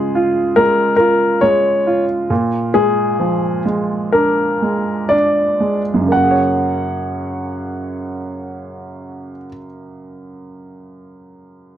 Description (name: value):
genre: pop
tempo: 58-71 BPM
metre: 4/4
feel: straight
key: F# major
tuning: A4 = 440 Hz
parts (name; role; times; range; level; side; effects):
- clear grand piano; melody; 0.0-9.5 s; G#4 to F#5; -15 LUFS; left 1 dB; none
- clear upright piano; accompaniment; 0.0-11.8 s; F#2 to C#5; -19 LUFS; right 2 dB; none
room: studio ambience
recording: dry, close 1970s-style studio recording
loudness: -14 LUFS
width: side -11 dB against mid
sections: 0.0-6.1 A section; 6.1-10.2 B section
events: slowing down 0.0-6.1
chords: 0.0 C#; 2.3 A#7; 6.1 F#add9